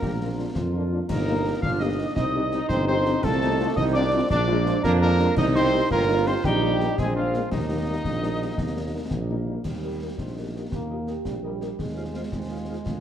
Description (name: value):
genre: military-style march for wind band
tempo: 112 BPM (dotted quarters)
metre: 6/8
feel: straight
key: Eb major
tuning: A4 = 440 Hz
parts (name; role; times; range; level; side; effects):
- warm cornet; melody; 0.0-12.7 s; Eb4 to F5; -30 LUFS; right 1 dB; none
- mellow wooden piccolo; second line; 0.0-9.4 s; Eb5 to F6; -32 LUFS; left 3 dB; none
- warm euphonium; second line; 0.0-13.0 s; Eb3 to Ab4; -30 LUFS; right 2 dB; none
- warm trombone section; sustained chords; 0.0-13.0 s; G3 to G4; -31 LUFS; right 1 dB; none
- warm tuba; bass; 0.0-13.0 s; G1 to F2; -26 LUFS; right 2 dB; none
- concert snare drum, concert bass drum and clash cymbals; drums; 0.0-13.0 s; none; -31 LUFS; left 1 dB; none
- mellow French horn section; accompaniment; 0.2-12.7 s; G3 to C5; -33 LUFS; left 4 dB; none
room: wet large studio reverb, RT60 1.3 s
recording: dark, warm production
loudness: -22 LUFS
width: side -9 dB against mid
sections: 0.0-9.7 A section; 9.7-13.0 A section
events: none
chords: 0.0 Bb; 1.1 Eb/G; 2.2 Cm; 3.2 F7/C; 4.3 Bb7; 5.4 Cm; 6.4 Eb/Bb; 7.0 Bb7; 7.5 Eb; 11.8 Fm7/Eb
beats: | 0.03 0.56 | 1.09 1.63 | 2.17 2.70 | 3.24 3.77 | 4.31 4.84 | 5.38 5.91 | 6.45 6.98 | 7.51 8.05 | 8.58 9.12 | 9.65 10.19 | 10.72 11.26 | 11.79 12.32 | 12.86